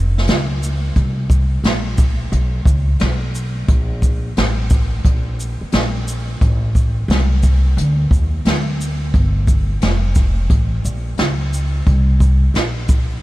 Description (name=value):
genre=hip hop, jazz-hop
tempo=88 BPM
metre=4/4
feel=swing 64% on 16ths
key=unclear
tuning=A4 = 440 Hz
part: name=upright bass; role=bass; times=0.0-13.2 s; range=F1 to Eb2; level=-17 LUFS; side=equal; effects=none
part: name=jazz brush drum kit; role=drums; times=0.2-13.1 s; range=hi-hat, kick drum, shaker, snare drum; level=-17 LUFS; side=equal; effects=none
room=little or no reverb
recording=vinyl crackle, faint mains hum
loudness=-14 LUFS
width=side -17 dB against mid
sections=0.0-13.2 A section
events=none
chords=none